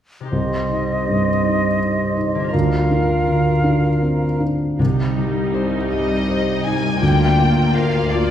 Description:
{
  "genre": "cinematic",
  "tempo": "54 BPM (dotted quarters)",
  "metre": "6/8",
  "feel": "rubato",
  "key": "C minor",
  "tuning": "A4 = 440 Hz",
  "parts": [
    { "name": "concert harp", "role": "arpeggios", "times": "0.2-8.3 s", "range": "C3 to C5", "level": "-25 LUFS", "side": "left 4 dB", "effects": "none" },
    { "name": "bright concert flute", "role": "second line", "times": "0.3-4.5 s", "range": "Eb5 to F5", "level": "-24 LUFS", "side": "left 1 dB", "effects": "none" },
    { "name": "clear clarinet", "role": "second line", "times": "0.3-4.4 s", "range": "F4 to G4", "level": "-28 LUFS", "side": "left 2 dB", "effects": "none" },
    { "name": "mellow cor anglais", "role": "second line", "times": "0.3-4.4 s", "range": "Bb4 to C5", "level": "-26 LUFS", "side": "right 1 dB", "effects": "none" },
    { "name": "felt-muted upright piano", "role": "accompaniment", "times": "0.3-8.3 s", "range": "C2 to Eb5", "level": "-19 LUFS", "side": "right 1 dB", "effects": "none" },
    { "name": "rich studio viola section", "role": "accompaniment", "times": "4.8-8.3 s", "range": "G3 to F4", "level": "-25 LUFS", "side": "right 1 dB", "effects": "none" },
    { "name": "warm studio cello section", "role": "bass", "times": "4.8-8.3 s", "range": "C2 to D2", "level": "-24 LUFS", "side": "right 2 dB", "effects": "none" },
    { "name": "warm studio violin section", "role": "melody", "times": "5.9-8.3 s", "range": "D5 to Ab5", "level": "-22 LUFS", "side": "left 4 dB", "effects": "none" }
  ],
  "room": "wet scoring stage reverb, RT60 1.9 s",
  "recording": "heard from further back in the room",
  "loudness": "-16 LUFS",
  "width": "side -10 dB against mid",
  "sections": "0.3-4.8 A section; 4.8-8.3 B section",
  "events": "none",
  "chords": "0.3 Cm; 2.5 Bb/D; 4.8 Cm; 7.0 Bb/D"
}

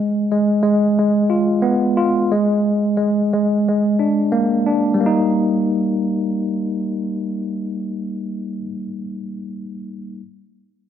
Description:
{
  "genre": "hip hop",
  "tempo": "89 BPM",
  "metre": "4/4",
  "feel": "swing 59% on 16ths",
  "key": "Eb major",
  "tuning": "A4 = 440 Hz",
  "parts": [
    { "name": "tine electric piano", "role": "accompaniment", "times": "0.0-10.2 s", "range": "G3 to F4", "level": "-17 LUFS", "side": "equal", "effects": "medium stereo tremolo, high-pass filter, low-pass filter" }
  ],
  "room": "moderate echo chamber reverb, RT60 1.9 s",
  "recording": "dark, warm production",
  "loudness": "-16 LUFS",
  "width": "side -9 dB against mid",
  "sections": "0.0-5.0 A section; 5.0-7.7 B section",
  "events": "none",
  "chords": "0.0 Abm6; 2.3 Bb7; 5.0 Eb"
}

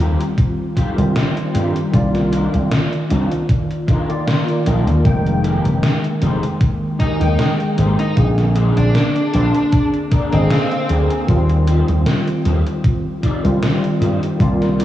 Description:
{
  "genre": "vaporwave",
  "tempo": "77 BPM",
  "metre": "4/4",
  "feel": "swing 54% on 16ths",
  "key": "unclear",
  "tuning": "A4 = 438 Hz",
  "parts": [
    { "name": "tine electric piano", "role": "accompaniment", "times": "0.0-14.8 s", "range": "D3 to G5", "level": "-20 LUFS", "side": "equal", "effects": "medium stereo tremolo, ensemble chorus, diffuse ambient delay" },
    { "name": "electric guitar at the edge of break-up", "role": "riff", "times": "0.0-14.8 s", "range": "C4 to Ab5", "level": "-28 LUFS", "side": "left 2 dB", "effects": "ensemble chorus, diffuse ambient delay" },
    { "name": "slap bass with an envelope filter", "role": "bass", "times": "0.0-14.8 s", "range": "F1 to G2", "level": "-16 LUFS", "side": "equal", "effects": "none" },
    { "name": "gated 80s digital drum machine", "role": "drums", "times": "0.2-14.8 s", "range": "hi-hat, snare drum", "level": "-23 LUFS", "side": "equal", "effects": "gated reverb, gated reverb snare, overdrive" },
    { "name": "electronic kick drum", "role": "drums", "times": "0.4-14.6 s", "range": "none", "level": "-17 LUFS", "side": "equal", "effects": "overdrive" },
    { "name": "bluesy overdriven lead guitar", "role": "melody", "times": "7.0-10.9 s", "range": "C4 to Eb4", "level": "-22 LUFS", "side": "equal", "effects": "distortion, tape echo" }
  ],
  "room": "moderate plate reverb, RT60 3.2 s",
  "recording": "dreamy mix soaked in reverb, cassette tape, small room reverb",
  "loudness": "-14 LUFS",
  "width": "side -13 dB against mid",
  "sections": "0.0-14.8 A section",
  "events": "clean electric guitar fill 9.7-11.3",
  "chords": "0.0 Eb69; 1.9 Cm11; 5.1 Fm11; 8.2 Bb9; 11.3 Eb69"
}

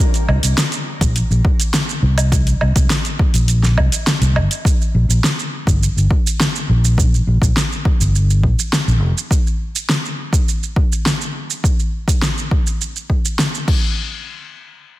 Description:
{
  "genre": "sunset chillout",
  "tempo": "103 BPM",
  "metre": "4/4",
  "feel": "straight",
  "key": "unclear",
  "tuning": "A4 = 439 Hz",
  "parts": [
    { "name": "deep house drum kit", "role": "drums", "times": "0.0-13.8 s", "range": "crash cymbal, hi-hat, shaker, snare drum, woodblock", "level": "-20 LUFS", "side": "equal", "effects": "overdrive" },
    { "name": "fingered electric bass", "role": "bass", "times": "0.3-9.1 s", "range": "F1 to C2", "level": "-14 LUFS", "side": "equal", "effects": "none" },
    { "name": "electronic kick drum", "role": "drums", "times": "1.0-13.8 s", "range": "none", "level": "-17 LUFS", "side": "equal", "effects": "overdrive" }
  ],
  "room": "light reverb",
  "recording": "dense, heavily limited modern master",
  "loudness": "-14 LUFS",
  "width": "side -17 dB against mid",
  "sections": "0.0-14.0 A section; 14.0-15.0 B section",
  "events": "none",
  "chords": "none"
}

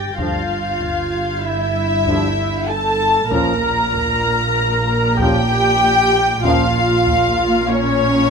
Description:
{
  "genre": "cinematic, suspense film score",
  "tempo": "96 BPM",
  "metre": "5/4",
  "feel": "straight",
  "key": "unclear",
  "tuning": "A4 = 440 Hz",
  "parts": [
    { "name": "warm studio violin section", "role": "melody", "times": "0.0-8.3 s", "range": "Db5 to Bb5", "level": "-22 LUFS", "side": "left 3 dB", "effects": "none" },
    { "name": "dark studio violin section", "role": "second line", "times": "0.0-8.3 s", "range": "Db5 to Bb5", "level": "-20 LUFS", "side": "left 1 dB", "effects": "none" },
    { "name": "warm studio viola section", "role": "accompaniment", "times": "0.0-8.3 s", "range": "Db4 to Bb4", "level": "-20 LUFS", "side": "right 1 dB", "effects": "none" },
    { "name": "warm studio cello section", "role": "bass", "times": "0.0-8.3 s", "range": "G2 to Bb2", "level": "-24 LUFS", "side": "right 1 dB", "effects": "none" },
    { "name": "warm studio double bass section", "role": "bass", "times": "0.0-8.3 s", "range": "G1 to Bb1", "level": "-24 LUFS", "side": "right 2 dB", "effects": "none" },
    { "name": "dark studio violin section", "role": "texture", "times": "0.0-3.0 s", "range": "G6 to Bb6", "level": "-33 LUFS", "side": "left 2 dB", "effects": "none" },
    { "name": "bright trombone section", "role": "sustained chords", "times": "0.2-6.7 s", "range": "Bb2 to F3", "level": "-27 LUFS", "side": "right 5 dB", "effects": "none" },
    { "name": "dark French horn section", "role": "sustained chords", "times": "0.2-6.7 s", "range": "Db4 to G4", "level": "-25 LUFS", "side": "left 7 dB", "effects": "none" },
    { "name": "taiko ensemble", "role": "drums", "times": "0.2-7.7 s", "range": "none", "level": "-26 LUFS", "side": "equal", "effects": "none" }
  ],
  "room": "light reverb",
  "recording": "close, detailed microphones",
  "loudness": "-14 LUFS",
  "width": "side -5 dB against mid",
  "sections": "0.0-8.3 A section",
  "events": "none",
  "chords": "0.0 Gm7; 3.3 Bbm"
}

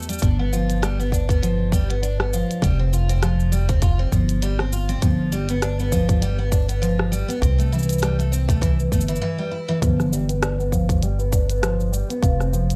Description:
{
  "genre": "folktronica",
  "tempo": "100 BPM",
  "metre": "4/4",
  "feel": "swing 56% on 16ths",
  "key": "G mixolydian",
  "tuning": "A4 = 439 Hz",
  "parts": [
    { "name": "picked twelve-string acoustic guitar", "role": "arpeggios", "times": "0.0-12.8 s", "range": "E3 to F4", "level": "-27 LUFS", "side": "equal", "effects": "vintage 12-bit sampler grit, low-pass filter, tape echo" },
    { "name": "upright bass", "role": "bass", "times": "0.0-12.8 s", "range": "F1 to E2", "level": "-24 LUFS", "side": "equal", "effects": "none" },
    { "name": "minimal click drum kit", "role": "drums", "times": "0.0-12.8 s", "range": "hi-hat, rim click, shaker", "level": "-32 LUFS", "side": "equal", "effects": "none" },
    { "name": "electronic kick drum", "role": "drums", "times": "0.2-12.4 s", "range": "none", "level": "-23 LUFS", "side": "equal", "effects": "none" }
  ],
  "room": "little or no reverb",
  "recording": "lossy compression artefacts",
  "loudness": "-21 LUFS",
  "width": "mono",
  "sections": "0.0-9.8 A section; 9.8-12.8 A section",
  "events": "break 9.2-9.8; filter sweep on twelve-string acoustic guitar 9.8-12.8",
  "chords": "0.2 G7; 2.6 Fsus2; 5.0 G7; 7.4 C6; 9.8 G7; 12.2 F5"
}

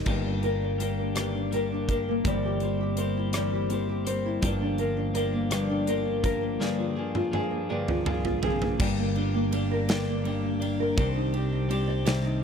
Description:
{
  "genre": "six-eight pop ballad",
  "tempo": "55 BPM (dotted quarters)",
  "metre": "6/8",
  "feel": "straight",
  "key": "G minor",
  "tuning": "A4 = 440 Hz",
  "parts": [
    { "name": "nylon-string guitar", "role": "accompaniment", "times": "0.0-12.4 s", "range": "G2 to D5", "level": "-28 LUFS", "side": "equal", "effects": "double-tracked left and right" },
    { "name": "fretless electric bass", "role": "bass", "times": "0.0-12.4 s", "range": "G1 to C2", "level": "-30 LUFS", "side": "right 1 dB", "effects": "analog chorus" },
    { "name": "twelve-string electric guitar", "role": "arpeggios", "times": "0.1-12.4 s", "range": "G2 to Ab4", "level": "-32 LUFS", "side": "left 4 dB", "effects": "spring reverb" },
    { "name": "huge arena drum kit", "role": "drums", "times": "0.1-12.2 s", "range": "crash cymbal, hi-hat, kick drum, ride cymbal, rim click, snare drum, toms", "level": "-30 LUFS", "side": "right 1 dB", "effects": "none" }
  ],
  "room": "small room ambience",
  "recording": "dry, close 1970s-style studio recording",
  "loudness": "-25 LUFS",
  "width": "side -7 dB against mid",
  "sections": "0.1-8.8 A section; 8.8-12.4 B section",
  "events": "drum fill 6.6-8.8",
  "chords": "0.1 Ebmaj7/G; 2.3 C7/G; 4.4 Gm7; 6.6 Bb7/G; 8.8 Gm; 11.0 Cmadd9"
}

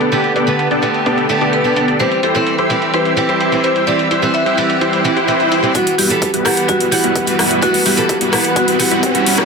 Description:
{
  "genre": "EDM, festival progressive house",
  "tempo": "128 BPM",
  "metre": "4/4",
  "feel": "straight",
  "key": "E minor",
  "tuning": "A4 = 440 Hz",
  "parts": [
    { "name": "marimba with medium hard mallets", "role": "melody", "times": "0.0-9.2 s", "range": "F#4 to E5", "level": "-19 LUFS", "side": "left 1 dB", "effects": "ping-pong delay" },
    { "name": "lush unison pad", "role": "sustained chords", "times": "0.0-9.4 s", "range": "D3 to F#5", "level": "-21 LUFS", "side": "left 1 dB", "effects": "chorus, sidechain pumping" },
    { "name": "dense compressed supersaw", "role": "riff", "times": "0.0-9.4 s", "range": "G3 to D5", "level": "-18 LUFS", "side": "equal", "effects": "sidechain pumping, low-pass filter, ping-pong delay" },
    { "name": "big-room dance drum kit", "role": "drums", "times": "0.0-9.4 s", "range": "hi-hat, rim click", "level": "-20 LUFS", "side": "equal", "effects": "overdrive, low-pass filter on hats, low-pass filter on snare" },
    { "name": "picked steel-string acoustic guitar", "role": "accompaniment", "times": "0.1-9.3 s", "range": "D3 to F#5", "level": "-18 LUFS", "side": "right 2 dB", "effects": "sidechain pumping, ping-pong delay" },
    { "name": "swell and riser", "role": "sound effects", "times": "5.0-9.4 s", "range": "none", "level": "-21 LUFS", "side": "equal", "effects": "none" },
    { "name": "electronic kick drum", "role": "drums", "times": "5.8-9.1 s", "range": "none", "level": "-23 LUFS", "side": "left 1 dB", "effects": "overdrive, high-pass filter on kick" }
  ],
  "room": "moderate lush hall reverb, RT60 1.7 s",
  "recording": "dense, heavily limited modern master",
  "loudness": "-12 LUFS",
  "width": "side -4 dB against mid",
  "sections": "0.0-5.8 A section; 5.8-9.4 B section",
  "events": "swell 5.0-5.8; build-up 5.8-9.4; riser 5.8-9.4; filter sweep on supersaw synth 5.8-9.4",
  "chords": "0.0 Gadd9; 2.0 C; 5.8 Emadd9"
}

